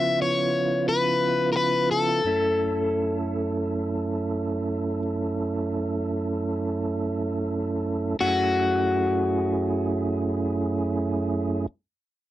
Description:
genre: blues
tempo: free time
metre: none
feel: none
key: F# minor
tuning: A4 = 442 Hz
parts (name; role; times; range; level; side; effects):
- overdriven semi-hollow guitar; melody; 0.0-11.7 s; F#4 to E5; -24 LUFS; left 3 dB; none
- percussive tonewheel organ; accompaniment; 0.0-11.7 s; F#2 to A4; -25 LUFS; right 2 dB; slow rotary speaker, overdrive
room: little or no reverb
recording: dry, close 1970s-style studio recording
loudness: -23 LUFS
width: side -14 dB against mid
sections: 0.0-8.2 A section; 8.2-11.6 B section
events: slowing down 2.3-8.2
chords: 0.0 C#7#9; 2.3 F#m7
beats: free time

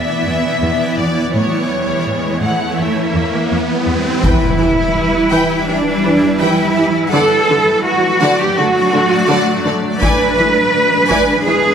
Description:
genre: cinematic, hybrid orchestral and electronic film score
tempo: 83 BPM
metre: 4/4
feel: straight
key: E dorian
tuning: A4 = 438 Hz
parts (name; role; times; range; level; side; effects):
- rich symphonic violin section; melody; 0.0-3.9 s; C#5 to F#5; -21 LUFS; left 3 dB; none
- granular cloud pad; sustained chords; 0.0-11.7 s; E3 to D5; -18 LUFS; equal; built-in reverb
- riser and impact; sound effects; 0.5-7.1 s; none; -21 LUFS; left 1 dB; none
- clear symphonic cello section; bass; 0.3-11.7 s; E2 to B4; -15 LUFS; right 2 dB; none
- clear symphonic violin section; second line; 4.2-11.5 s; E4 to G#5; -21 LUFS; left 2 dB; none
- rich symphonic viola section; accompaniment; 4.2-11.5 s; D3 to E3; -20 LUFS; right 1 dB; none
- taiko ensemble; drums; 4.2-5.6, 10.0-11.4 s; none; -20 LUFS; equal; none
room: moderate scoring stage reverb, RT60 1.8 s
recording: none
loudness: -12 LUFS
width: side -8 dB against mid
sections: 0.0-4.2 A section; 4.2-11.7 B section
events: riser 0.5-4.2; impact 4.2-7.1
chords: 0.0 E7(no3); 1.3 A; 2.8 Em; 7.1 D; 10.0 E7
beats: 0.62 | 1.35 2.07 2.79 3.52 | 4.24 4.96 5.68 6.41 | 7.13 7.85 8.57 9.30 | 10.02 10.74 11.47

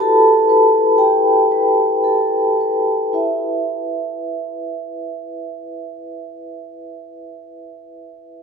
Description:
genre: classical, contemporary piece for solo vibraphone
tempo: 53-62 BPM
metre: 4/4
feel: rubato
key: E minor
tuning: A4 = 441 Hz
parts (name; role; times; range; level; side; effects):
- vibraphone with soft mallets; solo; 0.0-8.4 s; E4 to B5; -16 LUFS; equal; none
room: wet church reverb, RT60 2.7 s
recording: minimal, uncompressed stereo recording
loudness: -14 LUFS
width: side -6 dB against mid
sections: 0.0-3.2 A section; 3.2-7.5 B section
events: slowing down 0.0-3.2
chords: 0.0 Em; 3.2 E5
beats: 0.00 0.99 2.04 | 3.15 4.24 5.31 6.39

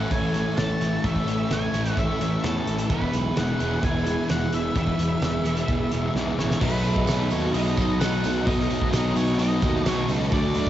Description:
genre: rock, shoegaze and dream pop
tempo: 129 BPM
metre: 4/4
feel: straight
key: unclear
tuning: A4 = 440 Hz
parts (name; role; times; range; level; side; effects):
- octave-fuzz lead guitar; melody; 0.0-10.7 s; A4 to A5; -32 LUFS; equal; distortion, tape echo
- icy glass pad; sustained chords; 0.0-10.7 s; F#4 to E6; -32 LUFS; right 3 dB; chorus, built-in reverb, cassette tape
- fingerpicked twelve-string acoustic guitar; arpeggios; 0.0-10.7 s; E3 to G#4; -35 LUFS; right 6 dB; none
- crunchy overdriven guitar; riff; 0.0-10.7 s; A2 to E4; -31 LUFS; right 9 dB; reverse reverb, cassette tape
- thick fuzz guitar; riff; 0.0-10.7 s; E2 to D4; -27 LUFS; left 4 dB; distortion, lush chorus, cassette tape
- fuzz picked electric bass; bass; 0.0-10.7 s; E1 to E2; -28 LUFS; equal; overdrive
- loose indie drum kit; drums; 0.1-10.7 s; crash cymbal, hi-hat, kick drum, snare drum; -28 LUFS; equal; cassette tape
- biting overdriven guitar; riff; 6.6-10.7 s; B2 to D#4; -32 LUFS; equal; tremolo, cassette tape
- tambourine; percussion; 7.1-10.2 s; none; -42 LUFS; right 9 dB; none
room: light reverb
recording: home recording on cassette, nothing above 7.8 kHz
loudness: -21 LUFS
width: side -12 dB against mid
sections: 0.0-6.6 A section; 6.6-10.7 B section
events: drum fill 6.2-6.6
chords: 0.0 Amaj7; 2.9 E; 6.6 B7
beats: 0.11 0.58 | 1.04 1.50 1.97 2.43 | 2.90 3.36 3.83 4.29 | 4.76 5.22 5.68 6.15 | 6.61 7.08 7.54 8.01 | 8.47 8.94 9.40 9.86 | 10.33

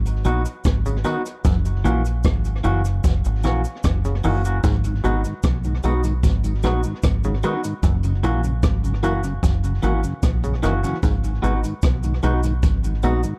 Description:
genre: roots reggae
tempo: 75 BPM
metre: 4/4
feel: straight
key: G# minor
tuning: A4 = 440 Hz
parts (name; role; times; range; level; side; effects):
- deep dub fingered electric bass; bass; 0.0-13.2 s; F#1 to B1; -24 LUFS; equal; none
- jazz brush drum kit; drums; 0.1-13.4 s; hi-hat, kick drum, rim click; -24 LUFS; equal; none
- cabasa; percussion; 0.1-13.4 s; none; -44 LUFS; equal; none
- clean electric guitar; accompaniment; 0.2-13.2 s; E3 to F#4; -29 LUFS; equal; spring reverb, tape echo, plate reverb
- muted clav; arpeggios; 0.9-11.6 s; F#2 to D#3; -31 LUFS; equal; none
- mellow tonewheel organ; accompaniment; 4.8-13.3 s; F#2 to F#4; -30 LUFS; equal; slow rotary speaker
room: little or no reverb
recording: dark, warm production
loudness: -21 LUFS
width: mono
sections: 0.0-13.4 A section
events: none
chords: 0.0 G#m7; 1.4 F#7; 4.6 G#m7; 7.8 F#7; 11.0 G#m7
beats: 0.65 | 1.45 2.24 3.04 3.84 | 4.64 5.44 6.24 7.04 | 7.84 8.64 9.44 10.23 | 11.04 11.83 12.63

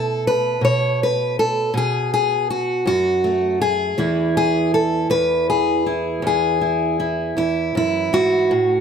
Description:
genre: folk, solo fingerstyle acoustic guitar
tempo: 53 BPM (dotted quarters)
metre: 6/8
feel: straight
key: unclear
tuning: A4 = 438 Hz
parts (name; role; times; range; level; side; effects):
- fingerpicked steel-string acoustic guitar; solo; 0.0-8.8 s; E2 to C#5; -17 LUFS; equal; none
room: light reverb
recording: close, detailed microphones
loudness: -17 LUFS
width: side -7 dB against mid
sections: 0.0-8.5 A section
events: none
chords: 0.0 B5; 4.0 E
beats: 0.62 | 1.74 2.87 | 3.99 5.11 | 6.24 7.37 | 8.51

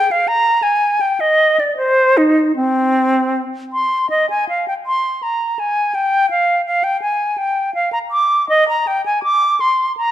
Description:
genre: classical, baroque-style fantasia for unaccompanied flute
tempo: 75-84 BPM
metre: 3/4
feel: rubato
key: C minor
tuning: A4 = 440 Hz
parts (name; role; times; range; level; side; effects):
- bright concert flute; solo; 0.0-10.1 s; C4 to D6; -14 LUFS; equal; none
room: moderate recital hall reverb, RT60 1.5 s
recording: dark, warm production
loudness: -14 LUFS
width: side -12 dB against mid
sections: 0.0-4.1 A section; 4.1-10.1 A section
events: none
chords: none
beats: 0.27 1.02 | 1.80 2.59 3.37 | 4.14 4.88 5.60 | 6.31 7.04 7.76 | 8.51 9.25 9.97

